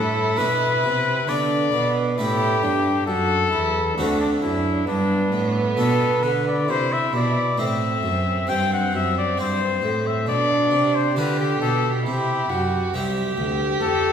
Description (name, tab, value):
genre	classical, baroque-style sonata movement with continuo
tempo	67 BPM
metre	4/4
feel	rubato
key	G major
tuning	A4 = 437 Hz
part	clear trumpet	melody	0.0-14.1 s	D4 to G5	-23 LUFS	left 5 dB	none
part	warm violin	second line	0.0-14.1 s	B3 to G4	-24 LUFS	right 4 dB	none
part	harpsichord	accompaniment	0.0-14.1 s	C2 to F4	-27 LUFS	equal	none
part	warm cello	bass	0.0-14.1 s	C2 to D3	-26 LUFS	right 2 dB	none
room	wet recital hall reverb, RT60 1.7 s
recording	heard from further back in the room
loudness	-19 LUFS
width	side -8 dB against mid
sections	0.0-14.1 A section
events	none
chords	0.0 G; 3.1 D7; 4.9 G; 6.7 C; 10.3 G7/B; 12.1 C